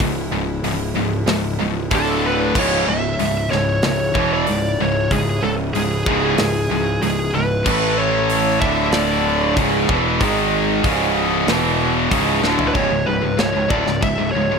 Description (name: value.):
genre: heavy metal.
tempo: 94 BPM.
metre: 4/4.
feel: straight.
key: C# phrygian.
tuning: A4 = 438 Hz.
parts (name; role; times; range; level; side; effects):
warm studio string section; sustained chords; 0.0-12.7 s; C#3 to E5; -31 LUFS; left 1 dB; none.
scooped high-gain guitar; riff; 0.0-14.6 s; C#2 to A3; -22 LUFS; left 13 dB; distortion.
thick fuzz guitar; riff; 0.0-12.7 s; C#2 to A3; -25 LUFS; left 1 dB; distortion.
tight distorted guitar; riff; 0.0-14.6 s; C#2 to A3; -23 LUFS; right 13 dB; distortion.
fuzz picked electric bass; bass; 0.0-14.6 s; C#1 to A1; -25 LUFS; equal; overdrive.
tight metal drum kit; drums; 0.0-14.2 s; crash cymbal, hi-hat, kick drum, snare drum, toms; -24 LUFS; equal; none.
high-gain lead guitar; melody; 2.0-14.6 s; G#4 to E5; -22 LUFS; right 1 dB; distortion, digital delay.
room: studio reverb.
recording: none.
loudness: -16 LUFS.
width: side -5 dB against mid.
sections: 0.0-12.8 A section; 12.8-14.6 B section.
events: half time 0.0-12.8; drum fill 12.4-12.8.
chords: 0.0 C#m; 1.9 D5; 2.6 C#m; 7.7 A5; 8.6 D5; 9.6 C#m; 10.2 G#5; 10.8 C#m; 11.5 E5; 12.1 C#m; 12.8 C#5.